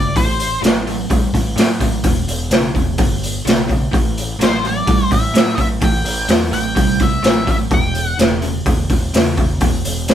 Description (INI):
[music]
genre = blues rock power trio and southern rock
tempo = 127 BPM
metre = 4/4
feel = straight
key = unclear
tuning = A4 = 440 Hz
[part]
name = octave-fuzz lead guitar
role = melody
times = 0.0-0.6, 4.4-8.2 s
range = C5 to G5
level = -21 LUFS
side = left 2 dB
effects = wah, distortion
[part]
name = cranked stack guitar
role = riff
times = 0.0-10.1 s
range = E2 to G3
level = -22 LUFS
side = right 2 dB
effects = overdrive
[part]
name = growling picked electric bass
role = bass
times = 0.0-10.1 s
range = E1 to A2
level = -23 LUFS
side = equal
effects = overdrive
[part]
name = raw garage drum kit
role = drums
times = 0.2-10.1 s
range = hi-hat, kick drum, snare drum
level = -15 LUFS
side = equal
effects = none
[sound]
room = light reverb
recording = band playing live in one room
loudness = -14 LUFS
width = side -10 dB against mid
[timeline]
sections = 0.0-10.1 A section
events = none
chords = 0.2 Am7; 2.0 Em7; 3.9 A7(no3); 7.7 E7(no3)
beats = | 0.16 0.63 1.10 1.57 | 2.04 2.51 2.98 3.46 | 3.93 4.40 4.87 5.35 | 5.82 6.29 6.77 7.24 | 7.72 8.19 8.67 9.14 | 9.62 10.09